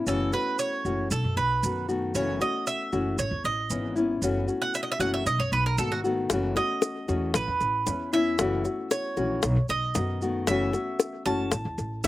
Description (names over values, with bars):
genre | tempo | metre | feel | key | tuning
latin, Cuban son and guajira | 115 BPM | 4/4 | straight | unclear | A4 = 440 Hz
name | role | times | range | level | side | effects
nylon-string guitar | accompaniment | 0.0-12.1 s | C#3 to F#4 | -28 LUFS | left 3 dB | none
upright bass | bass | 0.0-12.1 s | F#1 to F#2 | -30 LUFS | equal | none
Cuban tres | arpeggios | 0.1-12.1 s | F#4 to A5 | -29 LUFS | right 3 dB | none
maracas | percussion | 0.1-12.1 s | none | -37 LUFS | right 4 dB | none
bongos | percussion | 6.3-12.1 s | none | -27 LUFS | left 4 dB | none
room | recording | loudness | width
little or no reverb | recorded outdoors, with no room sound | -24 LUFS | side -15 dB against mid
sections
0.0-12.1 A section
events
Cuban tres solo 0.0-12.1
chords
0.1 F#m7; 1.1 B7; 2.1 F#m7; 3.2 Aadd9; 4.2 F#m7; 5.3 B7; 6.3 F#m7; 7.4 Aadd9; 8.4 F#m7; 9.4 B7; 10.5 F#m7; 11.5 A5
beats
| 0.07 0.59 1.11 1.63 | 2.15 2.67 3.19 3.71 | 4.23 4.75 5.27 5.79 | 6.31 6.83 7.35 7.87 | 8.39 8.91 9.44 9.96 | 10.48 11.00 11.52 12.04